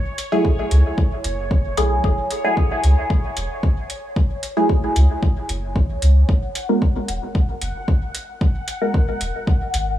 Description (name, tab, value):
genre	dub techno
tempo	113 BPM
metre	4/4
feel	straight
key	unclear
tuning	A4 = 440 Hz
part	filtered dub chord stab	stabs	0.0-10.0 s	F#3 to A#4	-22 LUFS	equal	phaser, vintage 12-bit sampler grit, sidechain pumping, dub echo
part	bubbling stepped-filter texture	texture	0.0-10.0 s	C#5 to F#5	-31 LUFS	equal	chorus, built-in reverb, sidechain pumping
part	electronic hi-hat	drums	0.2-9.8 s	none	-28 LUFS	right 1 dB	overdrive
part	electronic kick drum	drums	0.4-9.6 s	none	-18 LUFS	equal	overdrive
part	soft dub sub bass	bass	0.7-10.0 s	D#1 to C#2	-17 LUFS	equal	transformer saturation, sidechain pumping
room	little or no reverb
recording	dry, gritty hardware recording, small room ambience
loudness	-17 LUFS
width	side -12 dB against mid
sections	0.0-10.0 A section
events	none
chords	0.0 F#m9; 6.3 G#m9